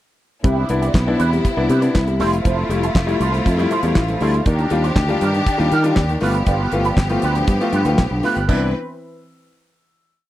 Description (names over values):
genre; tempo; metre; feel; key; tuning
disco; 119 BPM; 4/4; straight; C major; A4 = 441 Hz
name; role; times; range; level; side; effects
clear baby grand piano; accompaniment; 0.4-8.7 s; G2 to F4; -22 LUFS; left 3 dB; none
electric guitar with an envelope filter; accompaniment; 0.4-8.6 s; G3 to D5; -25 LUFS; right 6 dB; wah, ensemble chorus
clear studio string section; sustained chords; 0.4-8.7 s; C3 to B4; -23 LUFS; left 1 dB; none
overdriven fingered electric bass; bass; 0.4-8.7 s; F1 to Eb3; -19 LUFS; equal; none
damped 70s drum kit; drums; 0.4-8.6 s; crash cymbal, handclaps, hi-hat, kick drum, snare drum; -19 LUFS; equal; none
room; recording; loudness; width
little or no reverb; dry, close 1970s-style studio recording; -15 LUFS; side -14 dB against mid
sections
0.4-8.5 verse; 8.5-10.3 final chord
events
none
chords
0.4 Cmaj7; 2.2 Fmaj7; 4.5 Ebmaj7; 6.2 G7; 8.5 Cmaj7